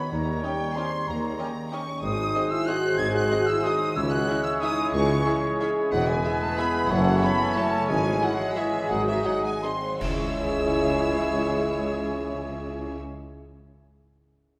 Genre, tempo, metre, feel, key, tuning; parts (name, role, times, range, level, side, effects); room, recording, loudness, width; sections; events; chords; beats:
classical, orchestral ballroom waltz; 151-204 BPM; 3/4; rubato; C# minor; A4 = 444 Hz
clear studio violin section; melody; 0.0-13.0 s; E5 to G#6; -38 LUFS; equal
clear oboe; second line; 0.0-13.0 s; B4 to D#5; -37 LUFS; equal
dark clarinet; second line; 0.0-13.0 s; D#4 to G#4; -37 LUFS; equal
mellow hollow concert flute; second line; 0.0-13.0 s; E5 to G#6; -34 LUFS; equal
mellow bassoon; accompaniment; 0.0-13.0 s; F#3 to A3; -35 LUFS; equal
mellow French horn section; sustained chords; 0.0-13.0 s; E3 to G#4; -35 LUFS; equal
concert harp; arpeggios; 0.0-13.9 s; E2 to C#6; -37 LUFS; equal
bright studio double bass section; bass; 0.1-13.0 s; E1 to D#2; -38 LUFS; equal
dark tuba; bass; 0.1-13.0 s; E1 to D#2; -35 LUFS; equal
rich studio cello section; bass; 0.1-13.0 s; C#2 to C#3; -36 LUFS; equal
rich studio violin section; second line; 0.4-13.0 s; G4 to E5; -40 LUFS; equal
warm studio viola section; accompaniment; 0.4-13.0 s; E3 to F#4; -39 LUFS; equal
warm trombone section; sustained chords; 0.4-13.0 s; D#3 to E4; -38 LUFS; equal
dark trumpet section; stabs; 0.4-13.0 s; G4 to A4; -37 LUFS; equal
cymbal swell, clash cymbals and concert bass drum; percussion; 7.9-10.7 s; -41 LUFS; equal
wet concert hall reverb, RT60 2.0 s; -25 LUFS; mono
0.0-10.0 A section; 10.0-12.2 B section
slowing down 7.4-10.0; band accent 10.0-10.4
0.1 D#7; 2.0 G#7; 4.0 C#m; 5.9 E; 6.9 F#m7; 7.9 C#m/G#; 8.9 G#7; 10.0 C#m
| 0.12 0.43 0.76 | 1.07 1.39 1.71 | 2.02 2.34 2.67 | 2.98 3.31 3.64 | 3.96 4.27 4.61 | 4.93 5.26 5.60 | 5.92 6.24 6.58 | 6.90 7.23 7.57 | 7.89 8.22 8.56 | 8.90 9.24 9.63 | 10.01 10.37 10.74 | 11.10 11.48 11.86